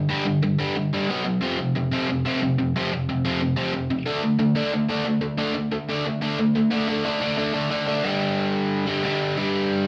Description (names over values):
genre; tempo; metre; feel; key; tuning
punk; 181 BPM; 4/4; straight; unclear; A4 = 440 Hz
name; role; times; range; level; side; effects
biting overdriven guitar; solo; 0.0-9.9 s; F2 to D4; -24 LUFS; equal; none
room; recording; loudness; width
moderate studio reverb, RT60 0.6 s; small room ambience; -24 LUFS; mono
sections
0.0-6.7 A section; 6.7-8.0 B section; 8.0-9.9 C section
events
none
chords
0.0 G5; 1.1 B5; 1.4 F5; 4.1 D5; 8.0 G5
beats
| 0.10 0.43 0.76 1.09 | 1.42 1.75 2.08 2.42 | 2.75 3.08 3.41 3.74 | 4.07 4.40 4.73 5.06 | 5.39 5.72 6.05 6.39 | 6.72 7.05 7.38 7.71 | 8.04 8.37 8.71 9.04 | 9.37 9.70